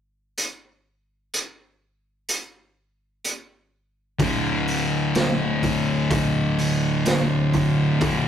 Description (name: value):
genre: stoner and doom metal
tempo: 63 BPM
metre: 4/4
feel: straight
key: unclear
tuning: A4 = 440 Hz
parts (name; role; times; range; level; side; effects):
- raw garage drum kit; drums; 0.4-8.2 s; hi-hat, kick drum, snare drum; -26 LUFS; right 1 dB; none
- thick fuzz guitar; riff; 4.2-8.3 s; D2 to D3; -21 LUFS; left 3 dB; distortion
- thick fuzz guitar; riff; 4.2-8.3 s; D2 to D3; -26 LUFS; right 6 dB; distortion
room: moderate stone room reverb, RT60 1.4 s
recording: rough rehearsal-room recording, tube saturation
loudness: -20 LUFS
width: side -9 dB against mid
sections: 0.4-4.2 A section; 4.2-8.3 B section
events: none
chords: 0.4 N.C.; 4.2 D5